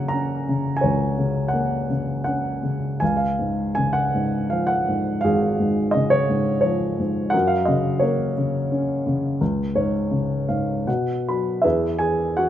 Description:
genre	classical, lyrical solo piano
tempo	74-88 BPM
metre	3/4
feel	rubato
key	Db major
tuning	A4 = 440 Hz
part	warm upright piano	solo	0.0-12.5 s	Ab1 to Cb6	-20 LUFS	equal	none
room	light reverb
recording	close, detailed microphones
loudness	-20 LUFS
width	side -11 dB against mid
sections	0.0-11.6 A section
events	upright piano fill 9.4-11.6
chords	0.0 Gb; 3.0 Db; 7.3 Gb; 9.4 Db5; 10.9 Cb5; 11.6 E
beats	0.13 | 0.82 1.53 2.27 | 3.02 3.77 4.51 | 5.24 5.95 6.65 | 7.34 8.02 8.71 | 9.41 10.11 10.88 | 11.65 12.38

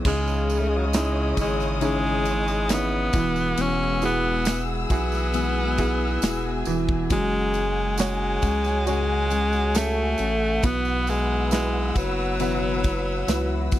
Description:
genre	pop ballad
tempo	68 BPM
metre	4/4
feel	straight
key	E major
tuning	A4 = 440 Hz
part	clear upright piano	accompaniment	0.0-13.8 s	C#3 to C#5	-29 LUFS	right 3 dB	none
part	warm studio string section	sustained chords	0.0-13.8 s	G#4 to E6	-32 LUFS	left 3 dB	none
part	fingerpicked plugged-in steel-string acoustic guitar	arpeggios	0.0-13.8 s	F#2 to G#4	-31 LUFS	left 10 dB	none
part	modern studio drum kit	drums	0.0-13.8 s	crash cymbal, kick drum, ride cymbal, snare drum	-26 LUFS	equal	none
part	bright alto saxophone	melody	0.1-13.7 s	F#3 to C#4	-26 LUFS	equal	slapback echo
part	saturated sub bass	bass	0.1-13.8 s	E1 to C#2	-27 LUFS	equal	none
part	tambourine	percussion	0.1-13.8 s	none	-40 LUFS	right 17 dB	none
room	little or no reverb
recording	dry, close 1970s-style studio recording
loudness	-21 LUFS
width	side -13 dB against mid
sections	0.0-13.8 A section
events	none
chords	0.0 C#madd9; 3.1 Eadd9; 7.1 F#madd9; 10.6 Bsus4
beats	| 0.05 0.93 1.81 2.70 | 3.58 4.46 5.34 6.22 | 7.11 7.99 8.87 9.76 | 10.64 11.52 12.40 13.28

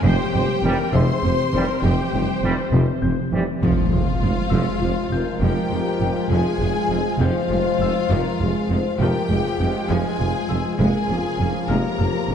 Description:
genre	cinematic, hybrid orchestral and electronic film score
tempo	67 BPM (dotted quarters)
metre	6/8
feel	straight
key	F harmonic minor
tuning	A4 = 440 Hz
part	rich symphonic violin section	melody	0.0-12.3 s	F5 to C6	-30 LUFS	left 4 dB	none
part	warm symphonic violin section	second line	0.0-12.3 s	F4 to C5	-29 LUFS	left 4 dB	none
part	rich symphonic viola section	accompaniment	0.0-12.3 s	F3 to C5	-29 LUFS	right 2 dB	none
part	ethereal airy pad	sustained chords	0.0-12.3 s	E3 to Db5	-28 LUFS	left 1 dB	ensemble chorus, built-in reverb
part	thumb-piano-like synth pluck	arpeggios	0.0-12.3 s	C3 to Ab4	-29 LUFS	left 3 dB	none
part	rich symphonic cello section	bass	0.0-12.3 s	F2	-26 LUFS	right 1 dB	none
part	rich symphonic double bass section	bass	0.0-12.3 s	F1	-25 LUFS	right 1 dB	none
part	warm tuba	bass	0.0-12.3 s	F1	-28 LUFS	right 4 dB	none
part	warm baby grand piano	texture	0.0-12.3 s	E5 to G6	-40 LUFS	left 3 dB	none
part	clear trombone section	sustained chords	0.6-12.3 s	E3 to Bb3	-32 LUFS	right 2 dB	none
part	dark French horn section	sustained chords	0.6-12.3 s	C4 to C5	-29 LUFS	left 6 dB	none
part	impact	sound effects	3.6-5.4 s	none	-24 LUFS	left 1 dB	none
room	wet scoring stage reverb, RT60 2.0 s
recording	dark, warm production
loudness	-18 LUFS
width	side -8 dB against mid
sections	0.0-3.6 A section; 3.6-12.3 B section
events	impact 3.6-5.4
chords	0.0 C/F; 3.6 Fm; 10.8 Bbm7/F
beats	| 0.04 0.94 | 1.83 2.73 | 3.62 4.52 | 5.42 6.31 | 7.21 8.10 | 9.00 9.89 | 10.79 11.68

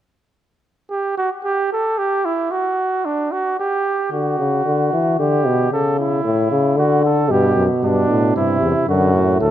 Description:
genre	classical, imitative canzona for brass ensemble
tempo	113 BPM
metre	3/4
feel	straight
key	G major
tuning	A4 = 443 Hz
part	mellow flugelhorn	second line	0.9-9.5 s	D4 to A4	-19 LUFS	right 3 dB	none
part	warm euphonium	accompaniment	4.1-9.5 s	A2 to E3	-17 LUFS	left 2 dB	none
part	warm bass trombone	bass	7.3-9.5 s	D2 to A2	-18 LUFS	left 1 dB	none
room	moderate concert hall reverb, RT60 2.5 s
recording	close, detailed microphones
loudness	-16 LUFS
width	side -11 dB against mid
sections	0.9-9.5 A section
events	none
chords	0.9 N.C.; 4.1 D; 5.2 G/D; 5.7 A/C#; 6.8 D; 7.3 G; 8.4 C/G; 8.9 D/F#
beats	| 0.91 1.45 1.99 | 2.52 3.05 3.59 | 4.12 4.66 5.19 | 5.72 6.25 6.77 | 7.30 7.83 8.36 | 8.89 9.41

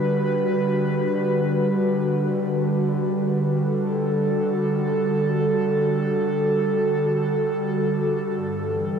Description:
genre	ambient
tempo	free time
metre	none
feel	none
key	G major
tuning	A4 = 440 Hz
part	airy breathy pad	solo	0.0-9.0 s	G2 to B4	-20 LUFS	equal	chorus, diffuse ambient delay
room	wet cathedral reverb, RT60 5.0 s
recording	dark, warm production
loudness	-20 LUFS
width	side -7 dB against mid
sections	0.0-9.0 A section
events	none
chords	0.0 Gmaj7; 8.3 Em/G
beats	free time

